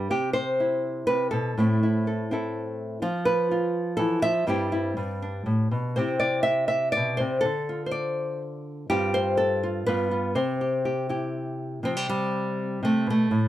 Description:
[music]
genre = folk, solo fingerstyle acoustic guitar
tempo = 123 BPM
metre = 3/4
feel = straight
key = C major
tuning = A4 = 440 Hz
[part]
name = nylon-string guitar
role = solo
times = 0.0-13.5 s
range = G2 to E5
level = -23 LUFS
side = equal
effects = none
[sound]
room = light reverb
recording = band playing live in one room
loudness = -23 LUFS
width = side -13 dB against mid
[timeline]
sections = 0.1-11.8 A section; 11.8-13.5 B section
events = none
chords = 0.1 C; 1.6 Am; 3.0 F; 4.5 C/G; 5.0 G; 6.0 C; 7.4 Dm; 8.9 G7sus4; 9.9 G7; 10.3 C; 11.8 C5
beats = | 0.11 0.60 1.09 | 1.57 2.06 2.54 | 3.02 3.50 3.99 | 4.48 4.97 5.47 | 5.97 6.46 6.96 | 7.45 7.93 8.41 | 8.89 9.38 9.86 | 10.35 10.84 11.33 | 11.84 12.33 12.82 | 13.30

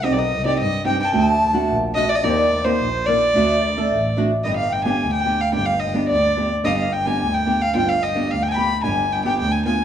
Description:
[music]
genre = klezmer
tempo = 109 BPM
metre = 2/4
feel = straight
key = D phrygian dominant, G phrygian dominant from 4.4 s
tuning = A4 = 440 Hz
[part]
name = rich violin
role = melody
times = 0.0-9.8 s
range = C5 to B5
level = -21 LUFS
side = right 1 dB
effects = analog delay
[part]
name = alto flute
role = second line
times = 0.0-9.8 s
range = C5 to B5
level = -24 LUFS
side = left 4 dB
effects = analog delay
[part]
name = flamenco guitar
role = accompaniment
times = 0.0-9.8 s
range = A3 to Bb4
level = -23 LUFS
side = right 2 dB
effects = none
[part]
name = warm double bass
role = bass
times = 0.0-9.7 s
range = G1 to G2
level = -24 LUFS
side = equal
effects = none
[sound]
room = moderate spring reverb, RT60 2.2 s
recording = none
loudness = -17 LUFS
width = side -9 dB against mid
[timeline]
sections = 0.0-4.4 A section; 4.4-9.8 B section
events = none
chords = 0.0 Cm; 1.1 D; 2.2 Eb; 3.3 D; 4.4 G7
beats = | 0.03 0.59 | 1.14 1.69 | 2.24 2.79 | 3.34 3.89 | 4.44 4.99 | 5.54 6.09 | 6.64 7.18 | 7.73 8.28 | 8.83 9.38

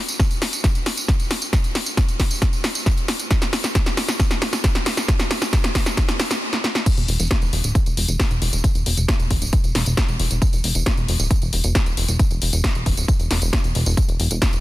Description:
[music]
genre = uplifting trance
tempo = 135 BPM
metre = 4/4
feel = straight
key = unclear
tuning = A4 = 440 Hz
[part]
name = punchy analog drum machine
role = drums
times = 0.1-14.6 s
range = crash cymbal, hi-hat, snare drum, tambourine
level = -22 LUFS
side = equal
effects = overdrive
[part]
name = electronic kick drum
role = drums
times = 0.2-14.5 s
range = none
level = -19 LUFS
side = equal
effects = none
[part]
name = plucky analog bass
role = bass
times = 7.0-14.6 s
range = D1 to E1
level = -21 LUFS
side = equal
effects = sidechain pumping
[sound]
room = little or no reverb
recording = dense, heavily limited modern master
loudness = -18 LUFS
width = side -17 dB against mid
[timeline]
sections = 0.0-6.9 A section; 6.9-14.6 B section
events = build-up 0.0-6.9; drum fill 0.0-6.4, 6.5-6.9; drop 6.9-14.6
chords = none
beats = 0.20 0.64 1.08 | 1.53 1.97 2.42 2.86 | 3.31 3.75 4.20 4.64 | 5.08 5.53 5.97 6.42 | 6.86 7.31 7.75 8.20 | 8.64 9.08 9.53 9.97 | 10.42 10.86 11.31 11.75 | 12.20 12.64 13.08 13.53 | 13.97 14.42

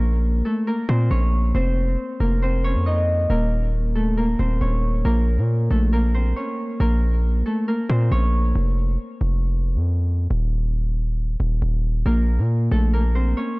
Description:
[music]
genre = hip hop, trap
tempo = 137 BPM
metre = 4/4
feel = half-time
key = Bb harmonic minor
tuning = A4 = 438 Hz
[part]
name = Celtic harp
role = melody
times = 0.0-13.6 s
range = A3 to Eb5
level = -24 LUFS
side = equal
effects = low-pass filter, tape echo
[part]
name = hard-hitting 808-style bass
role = bass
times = 0.0-13.3 s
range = Eb1 to Bb2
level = -19 LUFS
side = equal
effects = none
[sound]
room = small room ambience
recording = dry, gritty hardware recording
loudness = -19 LUFS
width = side -25 dB against mid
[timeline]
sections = 0.0-13.6 A section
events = break 8.6-12.1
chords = 0.0 Bbm; 1.5 F5; 3.3 Eb5; 5.0 Bbm; 8.6 N.C.; 12.1 Bbm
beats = 0.23 0.67 1.11 | 1.55 1.98 2.42 2.86 | 3.30 3.74 4.17 4.61 | 5.05 5.49 5.93 6.36 | 6.80 7.24 7.68 8.12 | 8.55 8.99 9.43 9.87 | 10.30 10.74 11.18 11.62 | 12.06 12.49 12.93 13.37

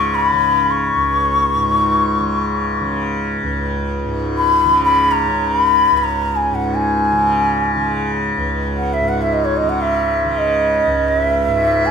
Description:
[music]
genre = indian classical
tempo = free time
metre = none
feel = none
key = C# raga kafi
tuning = A4 = 441 Hz
[part]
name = breathy bansuri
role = melody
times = 0.0-11.9 s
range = C#5 to C#6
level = -15 LUFS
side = left 1 dB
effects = none
[part]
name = tanpura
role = drone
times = 0.0-11.9 s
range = C#2 to C#3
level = -19 LUFS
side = equal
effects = none
[sound]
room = wet stone room reverb, RT60 1.0 s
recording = band playing live in one room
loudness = -14 LUFS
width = side -7 dB against mid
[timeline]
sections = 0.0-11.9 A section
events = none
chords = none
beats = free time

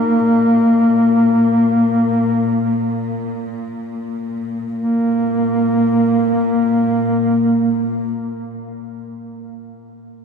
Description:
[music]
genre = caucasian folk, Caucasian lament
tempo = free time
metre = none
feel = none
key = unclear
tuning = A4 = 436 Hz
[part]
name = mellow duduk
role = melody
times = 0.0-8.1 s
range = Bb3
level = -16 LUFS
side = equal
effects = none
[part]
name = warm studio cello section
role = drone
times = 0.0-8.1 s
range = Bb2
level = -23 LUFS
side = left 1 dB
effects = none
[sound]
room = wet cathedral reverb, RT60 6.7 s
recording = in a vast, echoing space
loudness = -14 LUFS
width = side -6 dB against mid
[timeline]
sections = 0.0-4.8 A section; 4.8-10.2 B section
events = slowing down 0.0-4.8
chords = none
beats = free time

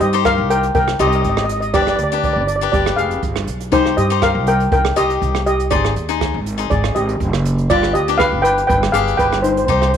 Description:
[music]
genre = calypso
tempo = 121 BPM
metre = 4/4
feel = straight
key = C minor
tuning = A4 = 439 Hz
[part]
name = steel pan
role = melody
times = 0.0-9.9 s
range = Eb4 to G5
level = -17 LUFS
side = equal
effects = none
[part]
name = upright bass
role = bass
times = 0.0-10.0 s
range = F1 to G2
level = -20 LUFS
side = right 1 dB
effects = none
[part]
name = jazz brush drum kit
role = drums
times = 0.0-10.0 s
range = hi-hat, kick drum, rim click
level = -23 LUFS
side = right 4 dB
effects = none
[part]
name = cavaquinho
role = accompaniment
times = 0.1-9.9 s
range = D4 to C5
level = -22 LUFS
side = left 13 dB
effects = none
[sound]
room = light reverb, studio reverb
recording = 1960s-style stereo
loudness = -14 LUFS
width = side -8 dB against mid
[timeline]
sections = 0.0-10.0 A section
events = none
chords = 0.0 Cm7; 1.7 G; 3.7 Cm7; 5.7 Ab; 7.7 G7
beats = 0.25 0.74 1.24 | 1.74 2.23 2.73 3.23 | 3.72 4.22 4.72 5.21 | 5.71 6.21 6.70 7.20 | 7.70 8.19 8.69 9.19 | 9.68

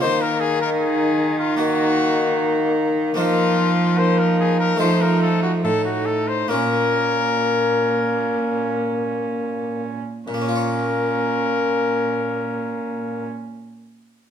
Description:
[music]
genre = classical, renaissance-style consort dance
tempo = 59-77 BPM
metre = 4/4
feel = straight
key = Bb minor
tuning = A4 = 440 Hz
[part]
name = clear cornet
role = melody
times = 0.0-13.3 s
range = F4 to C5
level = -24 LUFS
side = left 5 dB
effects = none
[part]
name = warm viola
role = second line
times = 0.0-13.3 s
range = Db4 to Eb4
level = -27 LUFS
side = right 4 dB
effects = none
[part]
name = harpsichord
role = accompaniment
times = 0.0-13.5 s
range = A2 to Db5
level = -28 LUFS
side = equal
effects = none
[part]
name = mellow bassoon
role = accompaniment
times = 0.0-13.2 s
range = A3 to Bb3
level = -23 LUFS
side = left 3 dB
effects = none
[part]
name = dark cello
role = bass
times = 0.0-13.3 s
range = A2 to F3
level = -24 LUFS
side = right 2 dB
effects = none
[sound]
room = wet stone room reverb, RT60 1.1 s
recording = heard from further back in the room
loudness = -18 LUFS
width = side -8 dB against mid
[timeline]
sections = 0.0-10.3 A section; 10.3-14.3 B section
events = slowing down 1.6-10.3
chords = 0.0 Ebm; 3.2 F7sus4; 4.8 F7; 6.5 Bbm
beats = | 0.03 0.81 1.59 2.38 | 3.17 3.98 4.80 5.63 | 6.50 7.40 8.32 9.28 | 10.28 11.29 12.31 13.32

